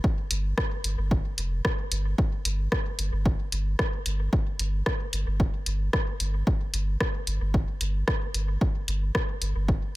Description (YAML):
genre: dub techno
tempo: 112 BPM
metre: 4/4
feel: straight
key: unclear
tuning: A4 = 440 Hz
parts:
  - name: electronic kick drum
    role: drums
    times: 0.0-9.8 s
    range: none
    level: -26 LUFS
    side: equal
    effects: none
  - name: pure sine sub bass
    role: bass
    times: 0.3-9.8 s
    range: F1 to G1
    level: -27 LUFS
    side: equal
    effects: sidechain pumping
  - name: punchy analog drum machine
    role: drums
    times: 0.3-9.5 s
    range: hi-hat, rim click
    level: -31 LUFS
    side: equal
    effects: none
room: little or no reverb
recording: none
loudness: -25 LUFS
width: side -18 dB against mid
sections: 0.0-10.0 A section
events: none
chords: none